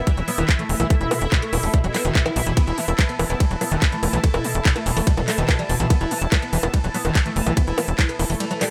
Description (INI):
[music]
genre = psychedelic trance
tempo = 144 BPM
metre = 4/4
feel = straight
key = unclear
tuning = A4 = 440 Hz
[part]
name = oud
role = melody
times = 0.0-8.7 s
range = B2 to E4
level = -30 LUFS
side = equal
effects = phaser, sidechain pumping, delay
[part]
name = bubbling stepped-filter texture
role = sustained chords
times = 0.0-8.7 s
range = E4 to A5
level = -32 LUFS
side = equal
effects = chorus, built-in reverb, sidechain pumping
[part]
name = tight sequencer bass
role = bass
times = 0.0-8.4 s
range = E1 to B1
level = -26 LUFS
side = equal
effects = none
[part]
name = overdriven acid bass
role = riff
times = 0.1-8.6 s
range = D#3 to E4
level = -31 LUFS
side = equal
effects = sidechain pumping, delay
[part]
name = drum and bass drum kit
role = drums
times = 0.1-8.7 s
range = bongos, handclaps, hi-hat, ride cymbal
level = -28 LUFS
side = equal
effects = none
[part]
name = electronic kick drum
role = drums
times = 0.1-8.1 s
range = none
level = -20 LUFS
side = equal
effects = none
[sound]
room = little or no reverb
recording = none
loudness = -21 LUFS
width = mono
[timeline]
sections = 0.0-8.7 A section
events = none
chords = 0.0 E5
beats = 0.07 0.49 | 0.90 1.32 1.74 2.15 | 2.57 2.99 3.40 3.82 | 4.24 4.65 5.07 5.49 | 5.90 6.32 6.74 7.15 | 7.57 7.99 8.40